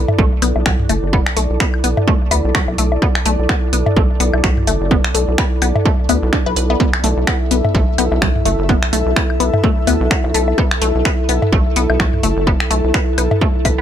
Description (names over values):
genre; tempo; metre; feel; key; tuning
minimal techno; 127 BPM; 4/4; swing 57% on 16ths; B minor; A4 = 440 Hz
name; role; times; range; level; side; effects
rubbery square bass; bass; 0.0-13.8 s; F#1 to D2; -18 LUFS; equal; sidechain pumping
airy breathy pad; texture; 0.0-13.8 s; E4 to E5; -22 LUFS; equal; chorus, sidechain pumping
electronic toms and woodblock; percussion; 0.1-13.8 s; none; -20 LUFS; left 2 dB; none
resonant blip pluck; riff; 0.2-13.8 s; F#3 to B4; -21 LUFS; left 2 dB; phaser, vintage 12-bit sampler grit, sidechain pumping, tape echo
electronic kick drum; drums; 0.2-13.8 s; none; -17 LUFS; equal; overdrive
minimal click drum kit; drums; 0.4-13.8 s; finger snaps, hi-hat; -20 LUFS; right 1 dB; none
room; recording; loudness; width
light reverb; none; -13 LUFS; side -10 dB against mid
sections
0.0-13.8 A section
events
none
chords
0.0 Bm7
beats
0.19 0.66 | 1.13 1.60 2.08 2.55 | 3.02 3.49 3.96 4.44 | 4.91 5.38 5.86 6.33 | 6.80 7.27 7.75 8.22 | 8.69 9.16 9.63 10.11 | 10.58 11.05 11.52 12.00 | 12.47 12.94 13.41